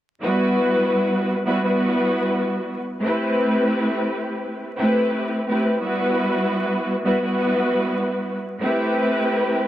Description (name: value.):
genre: hip hop.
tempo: 86 BPM.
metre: 4/4.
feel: swing 55% on 16ths.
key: E minor.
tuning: A4 = 440 Hz.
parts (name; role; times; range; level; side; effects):
dark studio string section; solo; 0.2-9.7 s; G3 to B4; -19 LUFS; equal; cassette tape, high-pass filter, low-pass filter, analog delay.
room: moderate spring reverb, RT60 1.6 s, small room ambience.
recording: echo-heavy mix, vinyl crackle.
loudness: -19 LUFS.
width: side -13 dB against mid.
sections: 0.2-9.7 A section.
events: none.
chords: 0.2 Emadd9; 3.0 Am7; 5.8 Emadd9; 8.6 Am7.